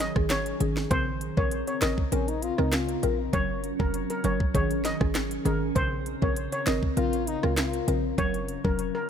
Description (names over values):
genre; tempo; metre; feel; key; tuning
dancehall; 99 BPM; 4/4; straight; Bb minor; A4 = 440 Hz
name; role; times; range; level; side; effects
steel pan; melody; 0.0-9.1 s; Bb4 to Eb5; -32 LUFS; equal; ping-pong delay
glassy FM pad; sustained chords; 0.0-9.1 s; Db3 to Bb4; -33 LUFS; equal; ensemble chorus, built-in reverb, sidechain pumping
short 808-style bass; bass; 0.0-8.9 s; F1 to Db2; -30 LUFS; equal; none
island pop drum kit; drums; 0.0-8.9 s; handclaps, hi-hat, kick drum, rim click, snare drum; -29 LUFS; equal; none
mallet-like synth pluck; accompaniment; 0.2-8.8 s; Db3 to Bb4; -31 LUFS; equal; chorus, phaser, sidechain pumping
warm French horn; second line; 2.1-3.2, 7.0-8.0 s; Db4 to F4; -34 LUFS; left 6 dB; ping-pong delay
room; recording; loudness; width
light reverb; none; -24 LUFS; side -8 dB against mid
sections
0.0-9.1 A section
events
none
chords
0.0 Absus4; 0.9 Bbmadd9; 3.3 Gb; 4.5 Absus4; 5.8 Bbmadd9; 8.2 Gb